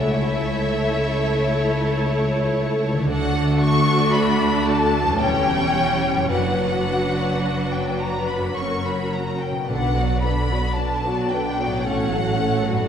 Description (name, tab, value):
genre	classical, slow romantic movement for symphony orchestra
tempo	53-58 BPM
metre	3/4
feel	rubato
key	B minor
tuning	A4 = 438 Hz
part	warm symphonic violin section	melody	0.0-12.9 s	E5 to C#6	-25 LUFS	left 2 dB	none
part	warm symphonic violin section	second line	0.0-12.9 s	C#4 to D5	-25 LUFS	left 1 dB	none
part	rich symphonic viola section	accompaniment	0.0-12.9 s	D3 to E4	-25 LUFS	right 1 dB	none
part	concert harp	arpeggios	0.0-12.9 s	E2 to D5	-28 LUFS	left 2 dB	none
part	dark symphonic cello section	bass	0.0-12.8 s	C#2 to B2	-29 LUFS	right 2 dB	none
part	dark symphonic double bass section	bass	0.0-12.8 s	E1 to D2	-27 LUFS	right 2 dB	none
part	timpani	percussion	9.7-11.3 s	B2	-30 LUFS	right 2 dB	none
room	wet scoring stage reverb, RT60 1.9 s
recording	heard from further back in the room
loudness	-18 LUFS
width	side -8 dB against mid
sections	0.0-12.9 A section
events	none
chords	0.0 A/C#; 3.1 D; 5.2 C#dim/E; 6.3 Bm/F#; 8.6 F#; 9.7 Bm; 11.8 F#m/A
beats	1.01 2.05 | 3.10 4.14 5.20 | 6.32 7.44 8.56 | 9.69 10.78 11.84